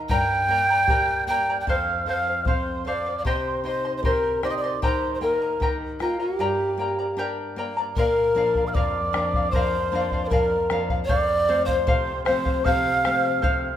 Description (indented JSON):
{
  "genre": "andean folk, Andean ensemble",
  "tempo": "76 BPM",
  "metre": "2/4",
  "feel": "straight",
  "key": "unclear",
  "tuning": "A4 = 440 Hz",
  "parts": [
    { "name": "charango", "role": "accompaniment", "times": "0.0-13.8 s", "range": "G4 to C6", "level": "-28 LUFS", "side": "left 2 dB", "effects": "none" },
    { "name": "nylon-string guitar", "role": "accompaniment", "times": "0.0-13.8 s", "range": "F2 to G4", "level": "-30 LUFS", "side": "left 2 dB", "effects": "none" },
    { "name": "mellow hollow polished pan flute", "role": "melody", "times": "0.1-13.8 s", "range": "F4 to G5", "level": "-24 LUFS", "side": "equal", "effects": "none" },
    { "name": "mellow hollow quena", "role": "second line", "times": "0.1-13.8 s", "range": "F5 to G6", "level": "-28 LUFS", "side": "right 3 dB", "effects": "none" },
    { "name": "bombo", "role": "percussion", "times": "0.1-13.6 s", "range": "none", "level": "-27 LUFS", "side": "left 1 dB", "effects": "none" }
  ],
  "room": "moderate recital hall reverb, RT60 1.7 s",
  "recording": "minimal, uncompressed stereo recording",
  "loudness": "-20 LUFS",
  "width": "side -10 dB against mid",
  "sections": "0.0-8.0 A section; 8.0-13.8 B section",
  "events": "none",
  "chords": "0.1 Gm; 1.7 F; 3.3 Cm; 4.8 Eb; 6.4 Gm; 8.0 Bb; 11.1 F"
}